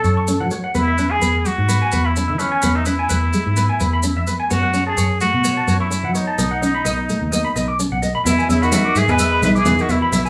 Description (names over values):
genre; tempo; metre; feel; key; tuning
highlife guitar band; 128 BPM; 4/4; swing 55% on 16ths; E major; A4 = 440 Hz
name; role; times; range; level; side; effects
trumpet with straight mute; melody; 0.0-10.3 s; C#4 to B4; -24 LUFS; equal; none
clean electric guitar; arpeggios; 0.0-10.3 s; B4 to D6; -25 LUFS; equal; none
fingered electric bass; bass; 0.0-10.3 s; B1 to F#3; -22 LUFS; equal; none
maracas; percussion; 0.0-10.3 s; none; -30 LUFS; equal; none
nylon-string guitar; accompaniment; 0.3-10.3 s; G#3 to E4; -27 LUFS; equal; none
edgy tenor saxophone; second line; 8.3-10.3 s; B2 to G#3; -28 LUFS; equal; none
congas; percussion; 8.3-10.2 s; none; -24 LUFS; equal; none
room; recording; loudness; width
wet studio reverb, RT60 0.5 s; band playing live in one room, small room ambience; -18 LUFS; mono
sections
0.0-8.3 A section; 8.3-10.3 B section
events
none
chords
0.0 F#m; 0.7 E; 4.5 F#m; 6.4 B; 8.3 E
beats
0.28 | 0.75 1.22 1.69 2.16 | 2.63 3.10 3.57 4.04 | 4.51 4.98 5.45 5.92 | 6.38 6.85 7.32 7.79 | 8.26 8.72 9.19 9.66 | 10.12